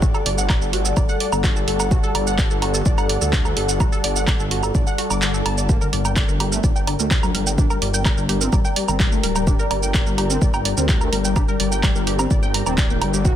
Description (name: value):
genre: melodic techno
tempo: 127 BPM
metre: 4/4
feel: straight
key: G harmonic minor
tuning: A4 = 437 Hz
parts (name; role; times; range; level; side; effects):
- deep dark ambient pad; sustained chords; 0.0-13.4 s; G3 to F#5; -29 LUFS; left 2 dB; chorus, built-in reverb, sidechain pumping
- wide unison pluck; arpeggios; 0.0-13.3 s; F#4 to D6; -28 LUFS; right 1 dB; sidechain pumping, ping-pong delay
- swelling detuned saw bass; bass; 0.0-13.3 s; D1 to D2; -24 LUFS; equal; sidechain pumping
- electronic kick drum; drums; 0.0-13.3 s; none; -19 LUFS; equal; none
- punchy analog drum machine; drums; 0.0-13.3 s; handclaps, hi-hat, shaker, woodblock; -24 LUFS; right 3 dB; none
- airy breathy pad; texture; 0.0-13.4 s; A4 to Bb5; -30 LUFS; equal; chorus, sidechain pumping
- analog synth brass; melody; 5.7-13.3 s; D3 to F#4; -26 LUFS; left 3 dB; chorus, cassette tape, sidechain pumping, tape echo
room: light reverb, digital ambience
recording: dense, heavily limited modern master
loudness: -17 LUFS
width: side -11 dB against mid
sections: 0.0-13.4 A section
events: kick drops out 5.2-5.7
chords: 0.0 D/G; 5.7 Gm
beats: | 0.02 0.49 0.97 1.44 | 1.91 2.38 2.86 3.33 | 3.80 4.28 4.75 5.22 | 5.69 6.17 6.64 7.11 | 7.58 8.05 8.53 9.00 | 9.47 9.94 10.42 10.89 | 11.36 11.83 12.31 12.78 | 13.25